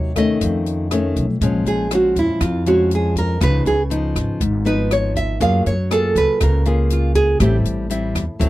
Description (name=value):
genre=bossa nova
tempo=120 BPM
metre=4/4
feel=straight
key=unclear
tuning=A4 = 439 Hz
part: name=nylon-string guitar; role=melody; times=0.0-7.6 s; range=Db4 to F5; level=-19 LUFS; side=right 2 dB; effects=none
part: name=nylon-string guitar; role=accompaniment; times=0.0-8.5 s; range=F2 to Ab4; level=-21 LUFS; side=left 3 dB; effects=none
part: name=upright bass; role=bass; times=0.0-8.5 s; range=Ab1 to Gb2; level=-20 LUFS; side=equal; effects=none
part: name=compact cocktail drum kit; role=drums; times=0.2-8.5 s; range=hi-hat, kick drum, rim click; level=-25 LUFS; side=equal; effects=none
room=little or no reverb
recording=dry, close 1970s-style studio recording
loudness=-16 LUFS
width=side -16 dB against mid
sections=0.0-1.4 A section; 1.4-8.5 B section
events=nylon-string guitar solo 1.4-8.5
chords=0.4 Faug7; 1.4 Bbm7; 3.4 Db9; 5.4 Gbmaj9; 7.4 Am7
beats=0.41 0.91 | 1.41 1.91 2.40 2.90 | 3.40 3.90 4.40 4.90 | 5.40 5.90 6.40 6.90 | 7.40 7.90 8.40